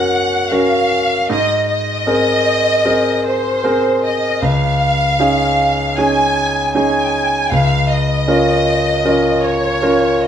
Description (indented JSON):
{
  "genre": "pop ballad",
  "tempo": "78 BPM",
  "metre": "4/4",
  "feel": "straight",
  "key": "Db major",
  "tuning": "A4 = 440 Hz",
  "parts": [
    { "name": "warm studio violin section", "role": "melody", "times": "0.0-10.3 s", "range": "C5 to Ab5", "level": "-16 LUFS", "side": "equal", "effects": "none" },
    { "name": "clear concert grand piano", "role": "accompaniment", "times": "0.0-10.3 s", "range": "Db2 to Bb4", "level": "-15 LUFS", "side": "equal", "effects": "none" }
  ],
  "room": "wet studio reverb, RT60 0.7 s",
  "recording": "band playing live in one room",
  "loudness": "-13 LUFS",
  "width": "side -9 dB against mid",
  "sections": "0.0-10.3 A section",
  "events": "none",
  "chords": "0.0 Gb; 1.3 Abadd9; 4.4 Dbsus2; 7.5 Bbm/Db"
}